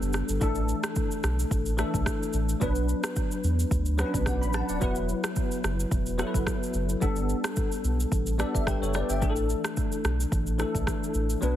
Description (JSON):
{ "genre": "afrobeats", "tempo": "109 BPM", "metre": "4/4", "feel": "swing 55% on 16ths", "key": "unclear", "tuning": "A4 = 441 Hz", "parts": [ { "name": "bell-like tine electric piano", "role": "accompaniment", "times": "0.0-11.6 s", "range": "E3 to B5", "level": "-29 LUFS", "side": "left 2 dB", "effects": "ensemble chorus" }, { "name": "warm sub bass", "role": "bass", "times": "0.0-11.6 s", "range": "D1 to E2", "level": "-28 LUFS", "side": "equal", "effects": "none" }, { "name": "afro-pop drum kit", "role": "drums", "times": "0.0-11.6 s", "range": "kick drum, rim click, shaker", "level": "-30 LUFS", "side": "right 1 dB", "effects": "none" } ], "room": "little or no reverb", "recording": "heavily compressed radio sound, multiband compression", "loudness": "-25 LUFS", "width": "side -12 dB against mid", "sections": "0.0-11.6 A section", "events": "tine electric piano fill 8.1-9.2", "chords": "0.4 Asus4; 2.6 Bm; 4.8 Esus2; 7.0 Gadd9; 9.2 Asus4" }